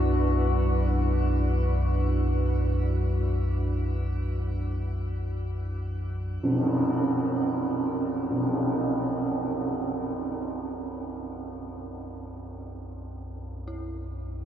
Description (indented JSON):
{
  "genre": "dark ambient drone",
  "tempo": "free time",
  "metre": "none",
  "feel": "none",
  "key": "B minor",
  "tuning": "A4 = 440 Hz",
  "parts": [
    { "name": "deep dark ambient pad", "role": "sustained chords", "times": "0.0-6.4 s", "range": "D4 to B4", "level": "-31 LUFS", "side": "right 1 dB", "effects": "chorus, built-in reverb, shimmer reverb" },
    { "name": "dark detuned synth bell", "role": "arpeggios", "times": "0.0-6.5, 13.7-14.4 s", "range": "E4 to F#4", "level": "-48 LUFS", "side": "right 1 dB", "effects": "chorus, diffuse ambient delay, shimmer reverb" },
    { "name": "deep rumbling drone", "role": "drone", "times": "0.0-14.4 s", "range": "B1 to F#2", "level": "-28 LUFS", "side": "equal", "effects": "built-in reverb, lush chorus" },
    { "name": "tam-tam", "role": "percussion", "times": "6.4-8.5 s", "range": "none", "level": "-27 LUFS", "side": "right 2 dB", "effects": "low-pass filter on cymbals" }
  ],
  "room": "wet cathedral reverb, RT60 5.8 s",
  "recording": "none",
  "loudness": "-25 LUFS",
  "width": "side -10 dB against mid",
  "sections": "0.0-6.4 A section; 6.4-14.4 A section",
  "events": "fade-in on synth drone 6.4-14.4; fade-in on synth bell 6.4-14.4",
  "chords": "0.0 Bm; 6.4 B5"
}